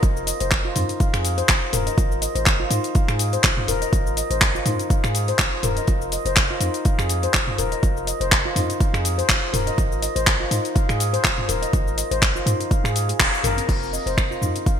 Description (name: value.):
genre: afro house.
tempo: 123 BPM.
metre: 4/4.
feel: swing 56% on 16ths.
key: F minor.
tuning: A4 = 440 Hz.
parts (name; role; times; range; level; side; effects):
handpan; arpeggios; 0.0-14.8 s; C4 to F5; -25 LUFS; left 2 dB; sidechain pumping, ping-pong delay.
warm 808-style bass; bass; 0.0-14.5 s; Eb1 to Ab2; -26 LUFS; equal; tube saturation, sidechain pumping.
deep house drum kit; drums; 0.0-14.8 s; cabasa, crash cymbal, finger snaps, handclaps, hi-hat, toms; -22 LUFS; equal; overdrive, gated reverb.
electronic kick drum; drums; 0.0-14.8 s; none; -20 LUFS; equal; overdrive.
room: light reverb, digital ambience.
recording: bright 1980s-style digital production.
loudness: -18 LUFS.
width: side -8 dB against mid.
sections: 0.0-13.7 A section; 13.7-14.8 B section.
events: drop 0.0-13.7; band accent 13.2.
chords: 0.0 Fm7; 13.7 F7(no3).